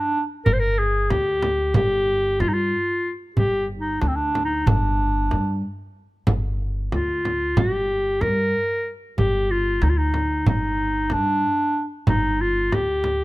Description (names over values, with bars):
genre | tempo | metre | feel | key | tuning
Turkish makam ensemble | 186 BPM (eighths) | 9/8 | straight | G makam kurdi | A4 = 439 Hz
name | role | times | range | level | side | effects
clear clarinet | melody | 0.0-13.2 s | C4 to C5 | -22 LUFS | equal | none
upright bass | bass | 0.5-13.2 s | G1 to G2 | -25 LUFS | equal | none
frame drum | percussion | 0.5-13.2 s | none | -23 LUFS | right 1 dB | none
room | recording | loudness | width
light reverb | close, detailed microphones | -19 LUFS | side -18 dB against mid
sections
0.0-13.2 A section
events
none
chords
none